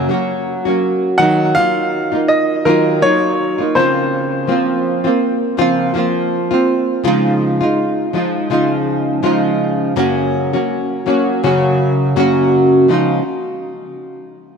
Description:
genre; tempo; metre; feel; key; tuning
acoustic pop; 82 BPM; 4/4; swing 55% on 16ths; Db major; A4 = 440 Hz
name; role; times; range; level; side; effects
bright upright piano; melody; 0.0-6.6 s; Bb4 to Gb5; -16 LUFS; equal; tape echo
nylon-string guitar; accompaniment; 0.0-13.2 s; Gb2 to Gb4; -14 LUFS; equal; double-tracked left and right
room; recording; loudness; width
wet plate reverb, RT60 3.6 s; dreamy mix soaked in reverb; -13 LUFS; side -6 dB against mid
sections
0.0-7.0 A section; 7.0-12.9 B section; 12.9-14.6 C section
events
none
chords
0.0 Gb; 1.2 Ebmadd9; 3.8 Bbmadd9/Db; 7.0 Dbadd9; 10.0 Gb; 12.9 Dbadd9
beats
0.46 | 1.19 1.92 2.66 3.39 | 4.12 4.85 5.58 6.31 | 7.04 7.78 8.51 9.24 | 9.97 10.70 11.43 12.16 | 12.89

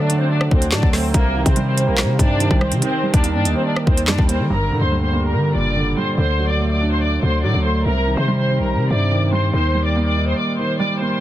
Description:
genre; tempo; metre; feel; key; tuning
hip hop, drill; 143 BPM; 4/4; half-time; G harmonic minor; A4 = 445 Hz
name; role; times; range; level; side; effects
dark studio violin section; melody; 0.0-11.2 s; Bb3 to D6; -22 LUFS; left 1 dB; low-pass filter
dark baby grand piano; accompaniment; 0.0-11.2 s; G2 to Eb4; -21 LUFS; right 3 dB; low-pass filter
dark analog pad; sustained chords; 0.0-11.2 s; Eb3 to G5; -30 LUFS; left 2 dB; chorus
growling 808-style bass; bass; 0.0-10.3 s; F#1 to Eb3; -20 LUFS; left 1 dB; none
drill drum kit; drums; 0.1-4.4 s; handclaps, hi-hat, kick drum, rim click, snare drum; -18 LUFS; equal; none
room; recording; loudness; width
digital ambience; dense, heavily limited modern master; -16 LUFS; side -13 dB against mid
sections
0.0-4.5 A section; 4.5-11.2 B section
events
break 10.4-11.2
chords
0.0 D; 1.1 Cm; 2.8 Eb; 4.5 Gm; 6.2 D; 7.9 Cm; 9.5 Eb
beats
0.30 0.72 | 1.14 1.56 1.98 2.40 | 2.82 3.24 3.66 4.08 | 4.50 4.92 5.34 5.76 | 6.18 6.60 7.02 7.44 | 7.86 8.28 8.70 9.12 | 9.54 9.96 10.37 10.79

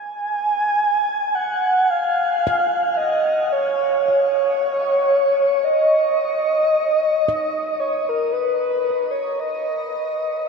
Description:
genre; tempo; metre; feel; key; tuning
ambient; 56 BPM; 4/4; straight; unclear; A4 = 440 Hz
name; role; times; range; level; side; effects
breathy flute-like synth lead; melody; 0.0-10.5 s; A#4 to G#5; -18 LUFS; equal; lush chorus, tape echo
handpan; arpeggios; 2.5-8.9 s; D#5 to E#5; -29 LUFS; left 2 dB; tape echo
room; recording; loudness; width
wet shimmer reverb, RT60 7.7 s; none; -17 LUFS; side -5 dB against mid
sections
0.0-10.5 A section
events
fade-out 5.5-10.5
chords
0.0 N.C.; 4.1 C#sus2; 8.4 N.C.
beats
0.85 1.93 3.01 | 4.09 5.16 6.23 7.29 | 8.36 9.44

